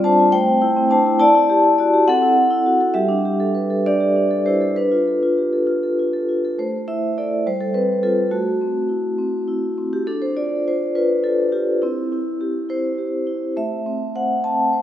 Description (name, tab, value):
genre	classical, contemporary piece for solo vibraphone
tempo	68 BPM (dotted quarters)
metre	6/8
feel	rubato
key	A dorian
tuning	A4 = 440 Hz
part	vibraphone with medium mallets	solo	0.0-14.8 s	G3 to A5	-16 LUFS	equal	none
room	wet scoring stage reverb, RT60 1.9 s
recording	minimal, uncompressed stereo recording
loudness	-16 LUFS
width	side -11 dB against mid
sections	0.0-6.6 A section; 6.6-14.8 B section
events	none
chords	0.3 Am7; 1.2 Em7; 2.1 C6; 2.9 Gadd9; 4.7 Dm6; 6.6 A5; 7.5 G7sus4; 8.3 Am; 10.1 Dm; 11.8 C; 13.6 Am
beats	0.33 | 1.19 2.06 | 2.94 3.83 | 4.74 5.66 | 6.57 7.46 | 8.33 9.21 | 10.09 10.95 | 11.82 12.71 | 13.57 14.44